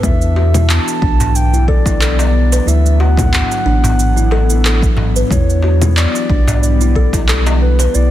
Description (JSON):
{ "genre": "organic downtempo", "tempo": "91 BPM", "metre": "4/4", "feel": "swing 54% on 16ths", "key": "E minor", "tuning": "A4 = 441 Hz", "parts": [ { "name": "dark clarinet", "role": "melody", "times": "0.0-8.1 s", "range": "B4 to A5", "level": "-22 LUFS", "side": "equal", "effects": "digital delay" }, { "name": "warbly tape-like pad", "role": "sustained chords", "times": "0.0-8.1 s", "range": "B2 to A4", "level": "-21 LUFS", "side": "left 2 dB", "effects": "chorus, built-in reverb, sidechain pumping" }, { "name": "kalimba", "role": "arpeggios", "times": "0.0-8.0 s", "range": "D4 to B4", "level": "-21 LUFS", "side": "left 1 dB", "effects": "digital delay" }, { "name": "warm sub bass", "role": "bass", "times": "0.0-8.1 s", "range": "A1 to E2", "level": "-13 LUFS", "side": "equal", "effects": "sidechain pumping" }, { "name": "electronic congas, shaker and handclaps", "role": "drums", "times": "0.0-8.1 s", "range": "none", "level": "-20 LUFS", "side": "equal", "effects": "none" }, { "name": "electronic kick drum", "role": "drums", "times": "0.0-7.3 s", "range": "none", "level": "-16 LUFS", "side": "equal", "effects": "none" }, { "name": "darbuka", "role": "percussion", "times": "0.4-7.9 s", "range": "none", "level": "-23 LUFS", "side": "left 1 dB", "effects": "none" } ], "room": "little or no reverb", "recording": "dense, heavily limited modern master", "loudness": "-10 LUFS", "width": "side -13 dB against mid", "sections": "0.0-8.1 A section", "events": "none", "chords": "0.0 Em7; 2.7 D69; 5.3 Em7" }